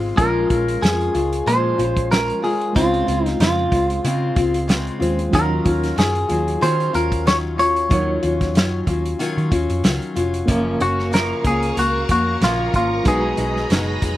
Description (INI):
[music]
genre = indie pop, bedroom pop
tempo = 93 BPM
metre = 4/4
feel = swing 55% on 16ths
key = unclear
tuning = A4 = 440 Hz
[part]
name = picked steel-string acoustic guitar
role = accompaniment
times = 0.0-14.2 s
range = Gb2 to F4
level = -23 LUFS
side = left 3 dB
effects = vibrato effect
[part]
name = reed electric piano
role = accompaniment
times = 0.0-14.2 s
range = Gb3 to F5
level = -27 LUFS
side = right 2 dB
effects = fast tremolo
[part]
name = string machine, violins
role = sustained chords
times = 0.0-0.2, 10.5-14.2 s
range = Ab4 to Db6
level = -29 LUFS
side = right 1 dB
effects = ensemble chorus
[part]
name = vintage muted picked electric bass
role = bass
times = 0.0-14.2 s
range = F1 to Eb3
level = -24 LUFS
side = equal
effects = none
[part]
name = clean electric guitar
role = melody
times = 0.2-13.7 s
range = F4 to Db5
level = -21 LUFS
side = equal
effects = slapback echo
[part]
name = loose indie drum kit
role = drums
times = 0.2-14.2 s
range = hi-hat, kick drum, snare drum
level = -20 LUFS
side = equal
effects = none
[sound]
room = little or no reverb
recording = recorded outdoors, with no room sound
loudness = -16 LUFS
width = side -14 dB against mid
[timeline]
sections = 0.2-10.5 A section; 10.5-14.2 B section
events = none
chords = 0.2 Bbm7; 2.8 Dbmaj7; 5.3 Ebm9; 10.5 Gbmaj7; 13.1 Cb6